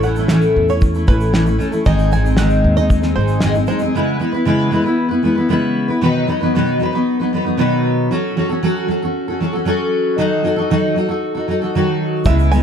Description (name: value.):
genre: acoustic pop.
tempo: 116 BPM.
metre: 4/4.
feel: straight.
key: C# minor.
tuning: A4 = 440 Hz.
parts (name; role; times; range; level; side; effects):
fingerpicked steel-string acoustic guitar; accompaniment; 0.0-12.6 s; G#2 to B4; -15 LUFS; equal; double-tracked left and right.
bluegrass banjo; arpeggios; 0.0-3.8, 12.3-12.6 s; B4 to G#5; -25 LUFS; right 7 dB; none.
upright bass; bass; 0.0-3.6, 12.3-12.6 s; G#1 to E2; -17 LUFS; equal; none.
cloth-damped thuddy drum kit; drums; 0.0-3.9, 12.3-12.6 s; kick drum, shaker, snare drum; -16 LUFS; equal; none.
room: light reverb, small room ambience.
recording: dark, warm production.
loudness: -14 LUFS.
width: side -8 dB against mid.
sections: 0.0-3.9 A section; 3.9-12.6 B section.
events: none.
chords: 0.0 A; 1.9 G#; 3.9 C#m7; 6.0 B; 8.1 F#m; 10.2 D#dim.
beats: 0.30 0.82 1.34 | 1.86 2.38 2.90 3.42 | 3.94 4.46 4.99 5.50 | 6.02 6.54 7.06 7.58 | 8.10 8.62 9.14 9.66 | 10.18 10.70 11.22 11.74 | 12.26.